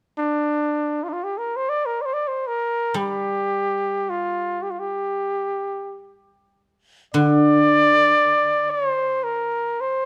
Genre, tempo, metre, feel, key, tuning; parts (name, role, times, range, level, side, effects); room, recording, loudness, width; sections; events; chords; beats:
chinese traditional; free time; G yu mode; A4 = 444 Hz
mellow trumpet; melody; 0.2-10.1 s; D4 to D5; -23 LUFS; equal
guzheng; accompaniment; 2.9-9.7 s; D3 to G3; -23 LUFS; equal
light reverb; close, detailed microphones; -21 LUFS; mono
0.0-10.1 A section
free time